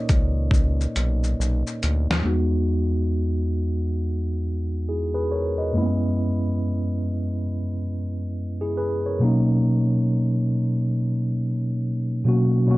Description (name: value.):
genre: lo-fi hip hop.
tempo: 69 BPM.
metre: 4/4.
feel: swing 63% on 16ths.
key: B major.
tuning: A4 = 440 Hz.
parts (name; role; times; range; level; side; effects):
mellow tine electric piano; accompaniment; 0.0-12.8 s; E2 to D#5; -22 LUFS; equal; fast stereo tremolo, cassette tape, low-pass filter.
round analog bass; bass; 0.1-2.2 s; B1 to D#2; -22 LUFS; equal; none.
dusty soul sampler-style drum kit; drums; 0.1-2.3 s; hi-hat, kick drum, shaker, snare drum; -22 LUFS; equal; overdrive, vintage 12-bit sampler grit.
room: wet small room reverb, RT60 0.5 s.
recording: dark, warm production.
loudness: -21 LUFS.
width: side -19 dB against mid.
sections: 0.0-2.3 A section; 2.3-12.8 B section.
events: tine electric piano solo 0.0-2.3; drum fill 0.5-2.3; filter sweep on tine electric piano 2.3-12.8.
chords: 0.0 Bmaj9; 2.3 Emaj7; 5.7 F#9sus4; 9.2 Bmaj9.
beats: 0.52 1.39 | 2.26 3.13 4.00 4.87 | 5.74 6.61 7.48 8.35 | 9.22 10.09 10.96 11.82 | 12.69.